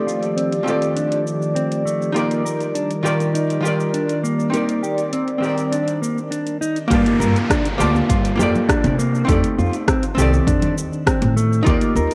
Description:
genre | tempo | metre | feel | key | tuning
sunset chillout | 101 BPM | 4/4 | straight | unclear | A4 = 442 Hz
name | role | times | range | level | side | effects
archtop guitar, miked and amplified | accompaniment | 0.0-12.1 s | Eb3 to A5 | -24 LUFS | equal | digital delay
airy breathy pad | sustained chords | 0.0-6.9 s | Eb3 to D5 | -26 LUFS | equal | chorus, vintage 12-bit sampler grit
mellow electric guitar | arpeggios | 0.0-12.1 s | A3 to Bb4 | -26 LUFS | equal | low-pass filter, digital delay
deep house drum kit | drums | 0.1-12.1 s | cabasa, hi-hat, rim click | -29 LUFS | equal | overdrive, low-pass filter on hats, small room reverb, low-pass filter on perc, low-pass filter on snare
upright bass | bass | 6.9-12.1 s | C2 to C3 | -22 LUFS | equal | none
electronic kick drum | drums | 6.9-11.8 s | none | -24 LUFS | equal | overdrive, small room reverb
downlifter | sound effects | 6.9-11.7 s | none | -33 LUFS | equal | none
congas | percussion | 7.2-12.1 s | none | -29 LUFS | equal | none
room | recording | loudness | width
moderate lush hall reverb, RT60 1.8 s | worn, warbling old tape, cassette tape, warbly pitch drift | -19 LUFS | mono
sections
0.0-6.9 A section; 6.9-12.1 B section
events
filter sweep on analog synth pad 0.0-6.9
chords
0.0 F13; 2.2 Ebmaj7; 4.5 Cm9; 6.9 Gm7; 9.3 F13

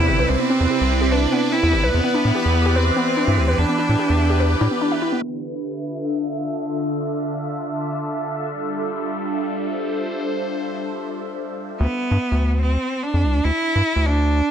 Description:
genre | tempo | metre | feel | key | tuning
IDM | 146 BPM | 4/4 | straight | D dorian | A4 = 441 Hz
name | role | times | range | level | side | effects
clear cello | melody | 0.0-4.8, 11.8-14.5 s | B3 to E4 | -22 LUFS | right 2 dB | vintage 12-bit sampler grit, digital delay
phased analog pad | sustained chords | 0.0-11.8 s | C3 to E5 | -23 LUFS | right 1 dB | phaser, chorus
warbly dusty pluck | arpeggios | 0.0-5.2 s | B3 to E5 | -24 LUFS | left 2 dB | chorus, ping-pong delay
round analog bass | bass | 0.0-4.7, 11.8-14.4 s | G1 to A2 | -18 LUFS | equal | none
bubbling stepped-filter texture | texture | 0.0-11.8 s | B4 to E5 | -31 LUFS | right 1 dB | chorus, built-in reverb
room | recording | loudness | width
light reverb, digital ambience | low-pass filter | -18 LUFS | side -8 dB against mid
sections
0.0-5.2 A section; 5.2-11.8 B section; 11.8-14.5 A section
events
break 4.8-5.2; filter sweep 5.2-11.8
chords
0.0 Cmaj7; 1.9 Em7; 5.2 Dmadd9; 8.5 G7sus4; 11.8 Dsus2

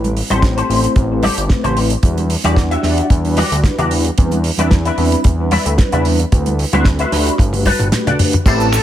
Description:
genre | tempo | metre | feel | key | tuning
nu-disco, nu disco | 112 BPM | 4/4 | swing 53% on 16ths | A dorian | A4 = 440 Hz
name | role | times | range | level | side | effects
mellow synth brass | accompaniment | 0.0-8.7 s | G3 to F#5 | -20 LUFS | equal | chorus, cassette tape, tape echo
fat analog bass | bass | 0.0-8.8 s | G1 to E2 | -17 LUFS | equal | none
damped 70s drum kit | drums | 0.0-8.8 s | crash cymbal, finger snaps, hi-hat, snare drum, tambourine, toms | -21 LUFS | right 1 dB | small room ambience
congas and cabasa | percussion | 0.0-8.8 s | none | -24 LUFS | right 1 dB | none
electric guitar with an envelope filter | riff | 0.3-8.8 s | E4 to E5 | -20 LUFS | left 3 dB | ensemble chorus, tape echo
kick drum | drums | 0.4-8.6 s | none | -12 LUFS | equal | small room ambience
string machine, full ensemble | sustained chords | 8.5-8.8 s | A4 | -18 LUFS | right 2 dB | phaser, ensemble chorus, vintage 12-bit sampler grit, sidechain pumping
room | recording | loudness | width
little or no reverb | none | -12 LUFS | side -12 dB against mid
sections
0.0-8.5 A section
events
filter sweep on analog polysynth 0.0-8.5; drum fill 7.4-8.5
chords
0.0 Am7; 2.0 Em9; 4.2 Cmaj9/E; 6.3 D13; 7.4 Gmaj9

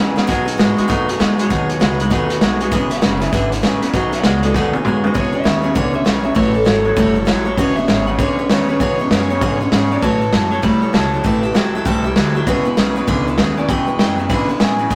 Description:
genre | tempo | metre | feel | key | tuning
rockabilly | 197 BPM | 4/4 | swing 62% on 8ths | E major | A4 = 439 Hz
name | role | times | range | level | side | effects
electric guitar through a small old amp | melody | 0.0-14.9 s | G#4 to B5 | -26 LUFS | equal | none
picked steel-string acoustic guitar | accompaniment | 0.0-14.9 s | C#3 to E5 | -22 LUFS | equal | none
electric guitar through a small old amp | riff | 0.0-14.9 s | E2 to A3 | -22 LUFS | equal | spring reverb
upright bass | bass | 0.0-14.9 s | E1 to B2 | -27 LUFS | equal | none
vintage drum kit | drums | 0.2-14.9 s | hi-hat, kick drum, snare drum, toms | -21 LUFS | equal | none
room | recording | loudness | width
moderate booth ambience, RT60 0.3 s | rough rehearsal-room recording, tube saturation | -16 LUFS | mono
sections
0.0-5.2 A section; 5.2-14.9 B section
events
drum fill 0.0, 4.5-5.2; clean electric guitar solo 5.2-14.9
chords
0.3 B6; 2.7 E6; 3.9 B6; 5.2 E6; 6.4 A6; 7.6 E6; 10.0 A6; 11.2 Am7; 12.5 E6

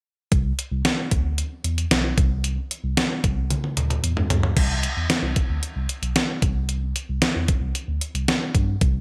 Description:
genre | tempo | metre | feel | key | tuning
1980s-style pop | 113 BPM | 4/4 | straight | C major | A4 = 441 Hz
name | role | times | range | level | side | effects
mellow tine electric piano | bass | 0.3-9.0 s | B1 to G2 | -28 LUFS | equal | none
clean 12-bit digital drum machine | drums | 0.3-8.9 s | crash cymbal, hi-hat, kick drum, snare drum, toms | -24 LUFS | equal | gated reverb
room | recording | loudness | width
light reverb | bright 1980s-style digital production | -23 LUFS | mono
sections
0.3-4.6 A section; 4.6-9.0 B section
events
drum fill 3.5-4.6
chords
none

